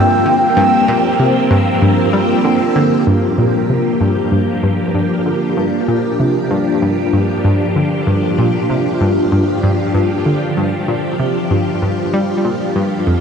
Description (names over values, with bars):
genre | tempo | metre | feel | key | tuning
ambient, sequencer-driven space music | 96 BPM | 4/4 | straight | G dorian | A4 = 440 Hz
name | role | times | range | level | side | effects
expressive synth lead | melody | 0.0-2.4 s | G5 | -18 LUFS | right 1 dB | chorus, tape echo
phased string machine | sustained chords | 0.0-13.2 s | F3 to G4 | -16 LUFS | equal | ensemble chorus, phaser
analog pluck | riff | 0.0-13.2 s | F2 to G3 | -16 LUFS | equal | chorus, tape echo
bubbling stepped-filter texture | texture | 0.0-13.2 s | F5 to E6 | -32 LUFS | equal | chorus, built-in reverb
room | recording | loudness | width
wet huge ambient reverb, RT60 8.1 s | dark, warm production | -12 LUFS | side -6 dB against mid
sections
0.0-3.1 A section; 3.1-13.2 B section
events
fade-in on synth texture 3.1-13.2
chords
0.0 Gm7